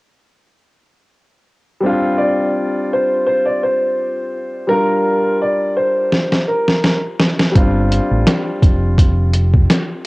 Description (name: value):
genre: hip hop, boom-bap hip-hop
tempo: 84 BPM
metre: 4/4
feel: swing 55% on 16ths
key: unclear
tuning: A4 = 440 Hz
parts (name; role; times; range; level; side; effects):
- warm concert grand piano; accompaniment; 1.8-10.1 s; G3 to Bb4; -20 LUFS; left 1 dB; cassette tape, high-pass filter, low-pass filter
- warm upright piano; melody; 2.2-7.0 s; Bb4 to D5; -17 LUFS; equal; high-pass filter, low-pass filter, cassette tape, analog delay
- trip hop sampler-style drum kit; drums; 6.1-9.9 s; hi-hat, kick drum, snare drum; -13 LUFS; equal; overdrive
- deep dub fingered electric bass; bass; 7.6-9.7 s; F1 to A1; -15 LUFS; equal; transformer saturation
room: light reverb, small room ambience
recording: home recording on cassette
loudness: -13 LUFS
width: side -23 dB against mid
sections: 1.8-10.1 A section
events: drum fill 6.1-7.6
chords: 1.8 Dm7/G; 4.7 Gm7; 7.6 Dm7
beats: | 1.84 2.56 3.27 3.98 | 4.70 5.41 6.13 6.84 | 7.55 8.27 8.98 9.70